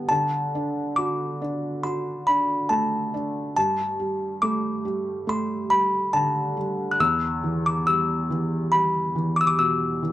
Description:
children's music, lullaby; 70 BPM; 4/4; straight; A4 = 437 Hz
felt-muted upright piano; accompaniment; 0.0-10.1 s; E2 to F#4; -26 LUFS; right 1 dB
music box; melody; 0.1-10.1 s; A5 to F#6; -23 LUFS; left 1 dB
small room ambience; dry, close 1970s-style studio recording; -22 LUFS; side -14 dB against mid
0.1-10.1 A section
0.1 D; 3.6 Gsus2; 7.0 Em
| 0.10 0.97 1.84 2.71 | 3.56 4.42 5.28 6.13 | 6.99 7.85 8.71 9.58

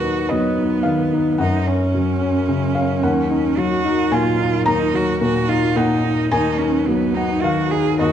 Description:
neoclassical piano and strings; 109 BPM; 3/4; rubato; A4 = 440 Hz
rich cello; second line; 0.0-8.1 s; B3 to Ab4; -21 LUFS; right 6 dB
felt-muted upright piano; accompaniment; 0.0-8.1 s; D#2 to Bb5; -18 LUFS; left 3 dB
hollow soft pad; sustained chords; 0.0-8.1 s; Gb3 to B4; -28 LUFS; right 4 dB; chorus
moderate scoring stage reverb, RT60 1.5 s; dark, warm production, nothing above 10.9 kHz; -16 LUFS; side -9 dB against mid
0.0-8.1 A section
0.0 B/D#; 1.4 Gb; 3.0 Ebm; 6.3 B/D#
0.30 0.84 | 1.39 1.94 2.48 | 3.02 3.57 4.12 | 4.66 5.21 5.77 | 6.32 6.88 7.44 | 8.01

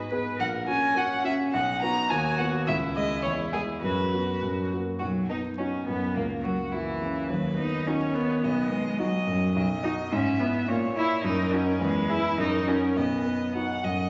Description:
quick classical-period movement for piano trio; 105 BPM; 2/4; straight; B major; A4 = 440 Hz
clear violin; melody; 0.0-14.1 s; A#3 to A#5; -33 LUFS; equal
warm grand piano; accompaniment; 0.0-14.1 s; A#1 to G#4; -31 LUFS; equal
rich cello; second line; 0.1-13.6 s; E3 to B4; -31 LUFS; equal
wet recital hall reverb, RT60 1.8 s; vinyl crackle, nothing above 7.8 kHz, faint mains hum; -27 LUFS; mono
0.0-5.0 A section; 5.0-14.1 B section
0.4 F#/A#; 1.5 B; 2.1 B/D#; 2.7 C#m; 3.2 C#m/E (rootless); 3.8 B5/F#; 4.4 F#; 5.0 B; 6.2 F#7/C#; 7.3 B/D#; 8.4 B; 10.1 E/G#; 10.7 A#dim; 11.2 D#m/F#; 11.8 E; 12.4 F#; 13.0 B
| 0.40 0.96 | 1.53 2.10 | 2.68 3.25 | 3.83 4.42 | 5.00 5.58 | 6.16 6.73 | 7.30 7.87 | 8.44 9.00 | 9.56 10.12 | 10.69 11.25 | 11.81 12.38 | 12.97 13.55

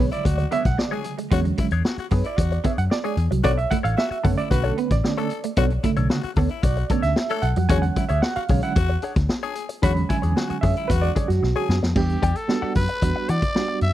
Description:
funk; 113 BPM; 4/4; straight; A4 = 443 Hz
direct-recorded clean electric guitar; accompaniment; 0.0-13.7 s; D4 to G5; -30 LUFS; left 7 dB; wah
semi-hollow electric guitar; riff; 0.0-7.7 s; F#3 to B3; -30 LUFS; right 9 dB; ensemble chorus
barky reed electric piano; stabs; 0.0-13.9 s; C#3 to B5; -26 LUFS; right 5 dB; overdrive, fast tremolo
vintage muted picked electric bass; bass; 0.0-13.9 s; F#1 to E3; -22 LUFS; left 1 dB
growling tenor saxophone; second line; 0.1-11.8 s; E4 to A4; -31 LUFS; left 8 dB
vintage drum kit; drums; 0.1-13.9 s; crash cymbal, hi-hat, kick drum, snare drum; -24 LUFS; left 1 dB
growling trumpet; melody; 12.0-13.9 s; G4 to E5; -27 LUFS; equal
small room ambience; dry, close 1970s-style studio recording; -19 LUFS; side -13 dB against mid
0.0-12.0 A section; 12.0-13.9 B section
reed electric piano solo 0.0-12.0; drum fill 11.4-12.0
0.0 E13; 3.4 Bm9; 7.7 E13; 12.0 Em9
0.25 0.78 | 1.31 1.85 2.38 2.91 | 3.44 3.98 4.51 5.04 | 5.57 6.11 6.64 7.17 | 7.70 8.23 8.77 9.30 | 9.83 10.36 10.89 11.43 | 11.96 12.49 13.03 13.56

